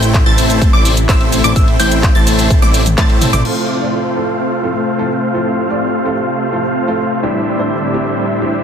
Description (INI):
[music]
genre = EDM, festival progressive house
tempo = 127 BPM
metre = 4/4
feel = straight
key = unclear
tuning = A4 = 440 Hz
[part]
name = lush unison pad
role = sustained chords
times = 0.0-8.6 s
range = A2 to G4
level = -22 LUFS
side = left 3 dB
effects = chorus, sidechain pumping
[part]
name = wide unison pluck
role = arpeggios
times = 0.0-3.4 s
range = D6 to A6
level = -21 LUFS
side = equal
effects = sidechain pumping, digital delay
[part]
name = big supersaw lead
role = riff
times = 0.0-8.6 s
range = A2 to A5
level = -16 LUFS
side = equal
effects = sidechain pumping, low-pass filter, digital delay
[part]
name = fat analog bass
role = bass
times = 0.0-3.4 s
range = A1 to A2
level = -16 LUFS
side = equal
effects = sidechain pumping
[part]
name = house drum kit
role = drums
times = 0.0-3.5 s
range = cabasa, crash cymbal, handclaps, hi-hat, toms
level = -19 LUFS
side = equal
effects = none
[part]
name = electronic kick drum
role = drums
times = 0.1-3.1 s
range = none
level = -12 LUFS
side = equal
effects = none
[part]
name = dark grand piano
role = accompaniment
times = 3.4-8.5 s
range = A2 to D5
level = -22 LUFS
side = right 2 dB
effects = sidechain pumping, digital delay
[sound]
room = digital ambience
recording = dense, heavily limited modern master, faint mains hum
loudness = -11 LUFS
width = side -8 dB against mid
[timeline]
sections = 0.0-3.5 A section; 3.5-8.6 B section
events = drop 0.0-3.5; drum fill 2.5-3.5; band accent 3.0; filter sweep on analog synth pad 3.5-8.6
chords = 0.0 Am; 3.5 F/A; 7.2 Cadd9/A